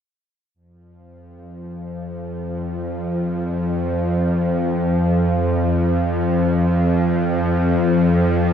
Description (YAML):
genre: ambient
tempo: free time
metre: none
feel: none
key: unclear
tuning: A4 = 436 Hz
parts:
  - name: bowed-like drone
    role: drone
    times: 1.6-8.5 s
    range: F2 to F3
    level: -18 LUFS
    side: equal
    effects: built-in reverb
room: wet cathedral reverb, RT60 6.3 s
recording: in a vast, echoing space, cassette tape, nothing above 10.3 kHz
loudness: -17 LUFS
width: side -8 dB against mid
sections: 0.5-8.5 A section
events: none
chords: none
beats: free time